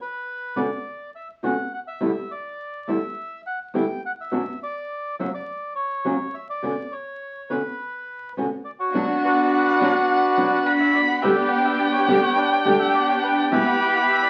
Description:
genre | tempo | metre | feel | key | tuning
tango | 104 BPM | 4/4 | rubato | B minor | A4 = 438 Hz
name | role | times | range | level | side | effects
bandoneon | melody | 0.0-14.3 s | D4 to G5 | -27 LUFS | equal | none
flamenco guitar | accompaniment | 0.6-13.6 s | E2 to G4 | -26 LUFS | equal | none
warm violin | second line | 8.9-14.3 s | F#5 to B5 | -24 LUFS | equal | none
dark studio string section | stabs | 8.9-14.3 s | B3 to G4 | -27 LUFS | equal | none
room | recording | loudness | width
wet studio reverb, RT60 0.6 s | very old 78 rpm record, vinyl crackle | -22 LUFS | mono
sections
0.0-8.9 A section; 8.9-14.3 B section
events
none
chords
0.0 Bmadd9; 2.0 Em7; 4.3 Bm/F#; 5.5 F#; 6.6 Bmadd9; 8.9 Bm; 11.2 G/B; 13.5 Em

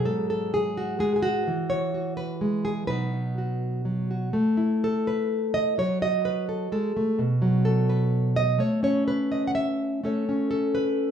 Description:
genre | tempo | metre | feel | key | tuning
folk, solo fingerstyle acoustic guitar | 126 BPM | 3/4 | rubato | unclear | A4 = 441 Hz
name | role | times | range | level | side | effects
nylon-string guitar | solo | 0.0-11.1 s | G#2 to F#5 | -23 LUFS | equal | none
room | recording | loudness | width
light reverb | band playing live in one room, studio ambience | -23 LUFS | side -8 dB against mid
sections
0.0-4.3 A section; 4.3-11.1 B section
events
none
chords
0.1 F#madd9/G#; 1.5 Eadd9; 2.9 B; 4.3 Asus2; 5.8 F#m; 7.2 B5; 8.6 A

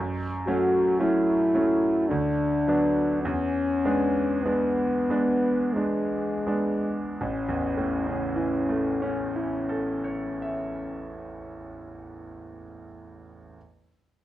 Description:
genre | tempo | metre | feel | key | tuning
classical, romantic duo for French horn and grand piano | 40-57 BPM | 3/4 | rubato | A major | A4 = 440 Hz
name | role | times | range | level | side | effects
bright concert grand piano | accompaniment | 0.0-13.6 s | A1 to E5 | -28 LUFS | right 2 dB | none
mellow French horn | melody | 0.5-11.1 s | G#3 to F#4 | -25 LUFS | left 2 dB | none
room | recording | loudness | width
light reverb | dark, warm production | -23 LUFS | side -14 dB against mid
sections
0.0-7.2 A section; 7.2-11.4 B section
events
slowing down 0.0-7.2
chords
0.0 F#m; 2.1 Bm/D; 3.2 E7; 7.2 A

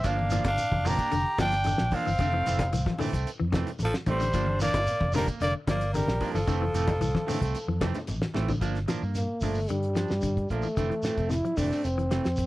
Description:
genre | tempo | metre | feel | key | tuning
afrobeat | 112 BPM | 4/4 | straight | G dorian | A4 = 440 Hz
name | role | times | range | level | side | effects
breathy trumpet | melody | 0.0-8.0 s | A4 to Bb5 | -29 LUFS | equal | none
raspy tenor saxophone | second line | 0.0-8.0 s | F3 to G4 | -36 LUFS | right 1 dB | none
semi-hollow electric guitar | arpeggios | 0.0-12.3 s | C3 to F3 | -35 LUFS | left 5 dB | spring reverb
clean electric guitar | stabs | 0.0-12.3 s | E3 to D4 | -34 LUFS | right 6 dB | none
fingered electric bass | bass | 0.0-12.5 s | F1 to G2 | -29 LUFS | equal | none
cloth-damped thuddy drum kit | drums | 0.0-12.5 s | hi-hat, kick drum, snare drum, toms | -32 LUFS | equal | none
congas | percussion | 0.0-8.6 s | none | -35 LUFS | left 2 dB | none
shekere | percussion | 0.0-12.5 s | none | -38 LUFS | right 2 dB | none
trombone with bucket mute | melody | 9.2-12.5 s | G3 to E4 | -30 LUFS | equal | none
room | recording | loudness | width
little or no reverb | none | -25 LUFS | side -17 dB against mid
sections
0.0-8.6 A section; 8.6-12.5 B section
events
drum fill 8.2-8.6; trombone solo 8.6-12.5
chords
0.0 Gm7; 2.2 Fmaj7; 4.3 Gm7; 6.5 Fmaj7; 8.6 Gm7; 10.8 Fmaj7

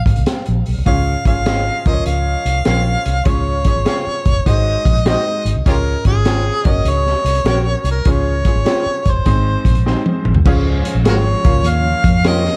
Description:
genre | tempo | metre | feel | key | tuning
uptempo 1960s-style soul | 100 BPM | 4/4 | swing 66% on 8ths | Db major | A4 = 442 Hz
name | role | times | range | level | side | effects
warm harmonica | melody | 0.0-12.6 s | F4 to F5 | -22 LUFS | equal | tape echo
vintage muted fingered electric bass | bass | 0.1-12.5 s | F1 to F2 | -20 LUFS | equal | none
crunchy breakbeat drum kit | drums | 0.1-12.5 s | crash cymbal, hi-hat, kick drum, snare drum, toms | -20 LUFS | equal | none
bright upright piano | accompaniment | 0.9-12.6 s | Ab2 to F5 | -26 LUFS | equal | none
mellow electric guitar | stabs | 1.5-12.4 s | Eb4 to F5 | -26 LUFS | equal | none
mellow tonewheel organ | sustained chords | 10.5-12.6 s | F3 to Db4 | -28 LUFS | equal | none
room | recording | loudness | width
light reverb | dark, warm production | -16 LUFS | mono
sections
0.0-10.5 A section; 10.5-12.6 B section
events
drum fill 9.9-10.5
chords
0.0 Ab; 0.9 Db; 1.8 Bbm; 3.3 Db; 4.5 Ab7; 5.7 Db; 6.6 Gb; 8.1 Db; 9.3 Ab; 10.5 Db; 11.4 Bbm/Db

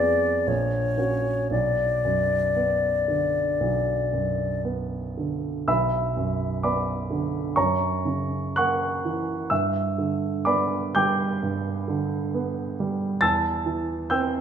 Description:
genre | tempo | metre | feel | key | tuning
classical, romantic duo for flute and grand piano | 56-68 BPM | 4/4 | rubato | B minor | A4 = 439 Hz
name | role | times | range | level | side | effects
mellow silver concert flute | melody | 0.0-4.6 s | C#5 to D5 | -23 LUFS | left 4 dB | none
warm grand piano | accompaniment | 0.0-14.4 s | A#1 to A6 | -24 LUFS | right 2 dB | none
room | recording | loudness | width
wet recital hall reverb, RT60 1.8 s | minimal, uncompressed stereo recording | -22 LUFS | side -8 dB against mid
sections
0.0-5.7 A section; 5.7-14.4 A section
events
none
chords
0.5 F#/A#; 1.5 Bm; 7.6 F#7; 9.5 G; 13.2 C/E

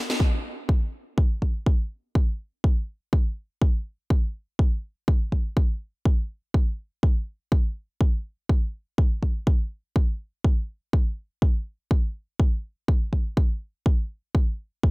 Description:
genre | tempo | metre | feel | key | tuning
house | 123 BPM | 4/4 | swing 58% on 16ths | none | none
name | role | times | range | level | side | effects
electronic kick drum | drums | 0.2-14.9 s | none | -21 LUFS | equal | none
room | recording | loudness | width
digital ambience | none | -23 LUFS | side -26 dB against mid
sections
0.2-14.9 A section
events
none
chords
none

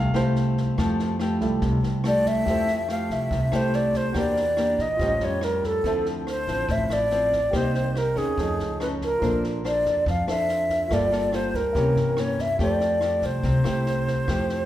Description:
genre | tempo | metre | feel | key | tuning
bossa nova | 142 BPM | 4/4 | straight | F major | A4 = 440 Hz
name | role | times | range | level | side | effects
nylon-string guitar | accompaniment | 0.0-14.7 s | A2 to C5 | -28 LUFS | left 1 dB | none
warm baby grand piano | accompaniment | 0.0-14.7 s | G3 to G5 | -32 LUFS | right 1 dB | none
upright bass | bass | 0.0-14.7 s | G1 to Bb2 | -28 LUFS | equal | none
compact cocktail drum kit | drums | 0.1-14.5 s | kick drum, rim click, snare drum | -34 LUFS | equal | none
breathy hollow concert flute | melody | 2.1-14.7 s | Ab4 to F5 | -24 LUFS | equal | none
room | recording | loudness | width
moderate recital hall reverb, RT60 1.4 s | recorded in a church or concert hall | -21 LUFS | side -13 dB against mid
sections
0.0-2.5 A section; 2.5-14.7 B section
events
grand piano solo 0.0-2.5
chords
0.0 Fmaj9; 4.2 Em7b5; 5.0 A7alt; 5.8 Dm9; 7.5 Cm7; 8.4 F7alt; 9.2 Bbmaj9; 10.9 Gm9; 11.8 C7b9; 12.6 Fmaj9

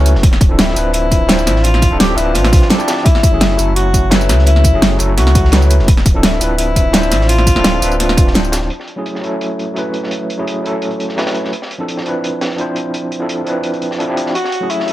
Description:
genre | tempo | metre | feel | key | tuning
liquid drum and bass | 170 BPM | 4/4 | straight | F# minor | A4 = 441 Hz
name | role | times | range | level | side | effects
mellow tenor saxophone | melody | 0.0-8.3, 14.3-14.9 s | C#4 to G4 | -18 LUFS | left 2 dB | ping-pong delay
overdriven tine electric piano | accompaniment | 0.0-14.9 s | F3 to E5 | -19 LUFS | equal | fast tremolo, tape echo
sub bass with octave | bass | 0.0-8.7 s | D1 to C#2 | -14 LUFS | equal | tube saturation
crunchy breakbeat drum kit | drums | 0.1-14.9 s | hi-hat, snare drum | -24 LUFS | equal | high-pass filter on hats, low-pass filter on hats, high-pass filter on snare, low-pass filter on snare, high-pass filter on room, low-pass filter on room
pop drum kit | drums | 0.1-8.6 s | hi-hat, snare drum, tambourine | -15 LUFS | right 1 dB | overdrive
electronic kick drum | drums | 0.2-8.2 s | none | -12 LUFS | equal | overdrive
room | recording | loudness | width
little or no reverb | none | -11 LUFS | side -15 dB against mid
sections
0.0-8.7 A section; 8.7-14.9 B section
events
drop 0.0-8.7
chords
0.2 Dm9; 3.1 F#m9; 5.9 Dm9; 8.7 F#m9; 11.5 Dm9; 14.3 F#m9

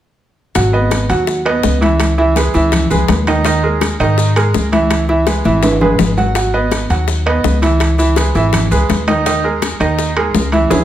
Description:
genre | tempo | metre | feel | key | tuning
latin, salsa | 165 BPM | 4/4 | straight | G# minor | A4 = 439 Hz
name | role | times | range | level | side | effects
bright concert grand piano | accompaniment | 0.6-10.8 s | D#3 to F#5 | -15 LUFS | right 3 dB | none
upright bass | bass | 0.6-10.8 s | G#1 to G#2 | -16 LUFS | left 1 dB | none
bongos | percussion | 0.6-10.8 s | none | -22 LUFS | left 9 dB | none
congas | percussion | 0.6-10.8 s | none | -21 LUFS | left 5 dB | none
maracas | percussion | 0.6-10.8 s | none | -28 LUFS | left 6 dB | none
timbales | percussion | 0.6-10.8 s | none | -21 LUFS | right 2 dB | none
room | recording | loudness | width
light reverb | none | -11 LUFS | side -12 dB against mid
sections
0.6-10.8 A section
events
drum fill 5.3-6.4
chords
0.6 G#m7; 2.0 C#m7; 3.5 D#7sus4; 4.9 C#m7; 6.4 G#m7; 7.8 C#m7; 9.3 D#7sus4

